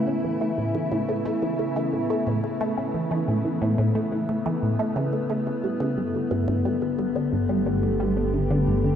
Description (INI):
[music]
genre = ambient, sequencer-driven space music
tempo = 89 BPM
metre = 4/4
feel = straight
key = G lydian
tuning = A4 = 440 Hz
[part]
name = evolving wavetable pad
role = sustained chords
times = 0.0-9.0 s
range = C#3 to B4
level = -26 LUFS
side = left 1 dB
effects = chorus, built-in reverb, shimmer reverb
[part]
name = resonant blip pluck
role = riff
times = 0.0-9.0 s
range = G2 to C#4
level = -25 LUFS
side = right 1 dB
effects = phaser, tape echo
[part]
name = analog drone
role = bass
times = 7.5-9.0 s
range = G1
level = -30 LUFS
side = equal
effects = chorus
[sound]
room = wet lush hall reverb, RT60 2.8 s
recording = dark, warm production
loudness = -22 LUFS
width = side -9 dB against mid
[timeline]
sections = 0.0-6.0 A section; 6.0-9.0 B section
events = none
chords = 0.0 Aadd9; 6.0 Gadd9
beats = | 0.58 1.25 1.93 2.60 | 3.28 3.95 4.62 5.30 | 5.97 6.65 7.32 8.00 | 8.67